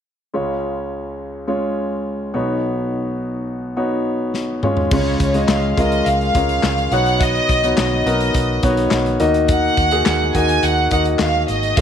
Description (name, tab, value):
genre	piano-driven pop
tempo	105 BPM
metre	4/4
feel	straight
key	Db mixolydian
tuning	A4 = 440 Hz
part	warm concert grand piano	accompaniment	0.3-11.8 s	Cb2 to Eb5	-19 LUFS	left 1 dB	none
part	modern studio drum kit	drums	4.3-11.8 s	crash cymbal, handclaps, hi-hat, kick drum, snare drum, toms	-21 LUFS	left 1 dB	none
part	warm studio violin section	melody	4.9-11.8 s	Db5 to Ab5	-19 LUFS	right 1 dB	slapback echo
part	vintage muted fingered electric bass	bass	4.9-11.8 s	Ab1 to Eb2	-22 LUFS	right 1 dB	none
room	moderate plate reverb, RT60 1.6 s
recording	1960s-style stereo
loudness	-16 LUFS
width	side -8 dB against mid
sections	0.3-4.9 A section; 4.9-11.8 B section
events	drum fill 4.3-4.9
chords	0.3 Db; 2.3 Cbadd9; 4.6 Db; 6.9 Cbadd9; 9.2 Ebm